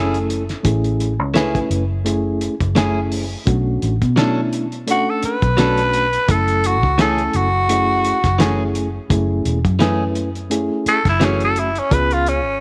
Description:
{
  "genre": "straight-eighth soul blues",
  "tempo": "85 BPM",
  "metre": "4/4",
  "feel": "swing 55% on 16ths",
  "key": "F# minor",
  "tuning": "A4 = 440 Hz",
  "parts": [
    { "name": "growling tenor saxophone", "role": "melody", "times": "0.0-0.3, 4.9-12.6 s", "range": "C#4 to B4", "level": "-20 LUFS", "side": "equal", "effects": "none" },
    { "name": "mellow reed electric piano", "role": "accompaniment", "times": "0.0-12.4 s", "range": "A3 to B4", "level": "-24 LUFS", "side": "equal", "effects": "fast tremolo" },
    { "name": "direct-recorded clean electric guitar", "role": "stabs", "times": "0.0-11.4 s", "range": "E3 to A4", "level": "-26 LUFS", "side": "equal", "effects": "none" },
    { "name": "vintage muted fingered electric bass", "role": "bass", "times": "0.0-12.6 s", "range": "E1 to B2", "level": "-23 LUFS", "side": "equal", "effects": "none" },
    { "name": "cloth-damped thuddy drum kit", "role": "drums", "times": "0.1-12.4 s", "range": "hi-hat, kick drum, snare drum", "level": "-24 LUFS", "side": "equal", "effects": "none" }
  ],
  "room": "light reverb, studio ambience",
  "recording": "none",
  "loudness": "-18 LUFS",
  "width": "mono",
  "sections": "0.0-12.6 A section",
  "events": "none",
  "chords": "0.0 F#m9; 3.5 Bm9; 6.3 F#m9; 11.9 C#7",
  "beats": "| 0.65 1.35 2.06 2.76 | 3.47 4.17 4.88 5.58 | 6.28 6.99 7.69 8.40 | 9.10 9.80 10.51 11.21 | 11.91"
}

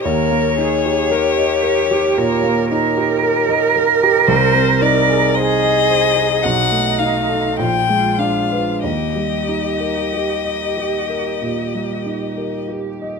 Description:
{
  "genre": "classical, slow romantic movement for piano trio",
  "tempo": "46-57 BPM",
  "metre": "4/4",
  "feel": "rubato",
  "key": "Eb major",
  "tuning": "A4 = 440 Hz",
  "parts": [
    { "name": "rich violin", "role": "melody", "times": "0.0-12.7 s", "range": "C5 to G5", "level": "-19 LUFS", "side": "left 10 dB", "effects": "none" },
    { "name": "rich cello", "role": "second line", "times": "0.0-13.2 s", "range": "D#4 to Bb4", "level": "-19 LUFS", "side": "right 8 dB", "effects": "none" },
    { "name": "warm grand piano", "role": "accompaniment", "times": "0.0-13.2 s", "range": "Bb1 to Eb5", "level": "-19 LUFS", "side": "right 1 dB", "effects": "none" }
  ],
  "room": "light reverb",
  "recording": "close, detailed microphones",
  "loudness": "-14 LUFS",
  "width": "side -5 dB against mid",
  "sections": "0.0-13.2 A section",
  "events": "none",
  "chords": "0.0 Eb; 4.3 Ab/C; 6.4 B7; 7.6 Bb7b9; 8.8 Eb",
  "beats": "| 0.03 1.11 2.16 3.22 | 4.29 5.37 6.44 7.59 | 8.84 10.14 11.43 12.70"
}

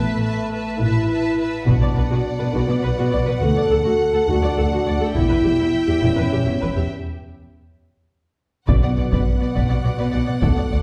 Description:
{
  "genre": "cinematic, epic orchestral film score",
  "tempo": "69 BPM (dotted quarters)",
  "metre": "6/8",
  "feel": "straight",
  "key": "B minor",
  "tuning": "A4 = 440 Hz",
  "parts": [
    { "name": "warm studio violin section", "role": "melody", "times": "0.0-10.8 s", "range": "F#5 to A5", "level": "-38 LUFS", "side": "equal", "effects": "none" },
    { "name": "warm symphonic violin section", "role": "second line", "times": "0.0-10.8 s", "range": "A4 to F#5", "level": "-34 LUFS", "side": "equal", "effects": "none" },
    { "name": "dark symphonic viola section", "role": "accompaniment", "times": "0.0-10.8 s", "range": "E4 to D5", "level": "-30 LUFS", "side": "equal", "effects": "none" },
    { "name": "mellow French horn section", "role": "sustained chords", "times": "0.0-10.8 s", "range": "A3 to B4", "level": "-24 LUFS", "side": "equal", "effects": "none" },
    { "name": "rich symphonic double bass section", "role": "bass", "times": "0.0-10.8 s", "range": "E1 to D2", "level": "-26 LUFS", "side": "equal", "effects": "none" },
    { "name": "warm symphonic cello section", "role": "bass", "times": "0.0-10.8 s", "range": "D2 to B2", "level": "-26 LUFS", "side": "equal", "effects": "none" },
    { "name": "taiko ensemble", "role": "drums", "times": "1.7-10.8 s", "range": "none", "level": "-24 LUFS", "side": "equal", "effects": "none" },
    { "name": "timpani", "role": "percussion", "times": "8.7-9.5 s", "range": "B2", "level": "-30 LUFS", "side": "equal", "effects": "none" }
  ],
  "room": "wet recital hall reverb, RT60 1.3 s",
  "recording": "recorded in a church or concert hall",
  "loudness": "-20 LUFS",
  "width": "mono",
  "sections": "0.0-8.7 A section; 8.7-10.8 A section",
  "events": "break 6.9-8.7",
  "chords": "0.0 Asus2; 1.7 Bm; 3.4 D; 5.2 Em; 6.9 N.C.; 8.7 Bm",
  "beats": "0.81 | 1.67 2.55 | 3.42 4.29 | 5.16 6.03 | 6.91 7.80 | 8.68 9.56 | 10.43"
}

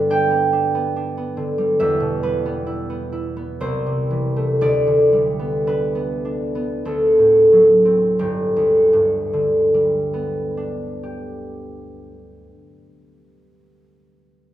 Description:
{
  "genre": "classical, solo harp piece",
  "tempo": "43-72 BPM",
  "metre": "3/4",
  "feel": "rubato",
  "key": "G major",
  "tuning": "A4 = 441 Hz",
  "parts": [
    { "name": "concert harp", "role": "solo", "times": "0.0-13.7 s", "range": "G1 to B5", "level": "-16 LUFS", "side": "equal", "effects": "none" }
  ],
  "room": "wet recital hall reverb, RT60 1.5 s",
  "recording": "none",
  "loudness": "-16 LUFS",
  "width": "side -13 dB against mid",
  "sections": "0.0-8.2 A section; 8.2-12.2 B section",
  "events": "slowing down 0.5-8.2",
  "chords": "0.0 G; 1.8 Em; 3.6 Am/C; 4.6 G/D; 6.8 D7; 8.2 G",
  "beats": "0.12 0.96 | 1.81 2.69 3.61 | 4.59 5.64 6.84 | 8.19 9.55 10.90"
}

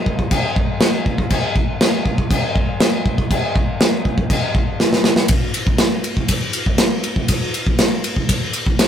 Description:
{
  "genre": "metal",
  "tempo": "120 BPM",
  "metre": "4/4",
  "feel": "straight",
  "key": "none",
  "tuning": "none",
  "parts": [
    { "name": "modern studio drum kit", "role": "drums", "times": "0.1-8.9 s", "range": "china cymbal, kick drum, ride cymbal, snare drum", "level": "-15 LUFS", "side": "equal", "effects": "none" }
  ],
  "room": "light reverb",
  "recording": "rough rehearsal-room recording, warm saturation",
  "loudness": "-15 LUFS",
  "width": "side -9 dB against mid",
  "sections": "0.0-5.3 A section; 5.3-8.9 B section",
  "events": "drum fill 4.8-5.3",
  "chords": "none",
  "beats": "0.31 0.81 | 1.31 1.81 2.30 2.80 | 3.30 3.80 4.30 4.80 | 5.30 5.79 6.29 6.79 | 7.29 7.79 8.29 8.79"
}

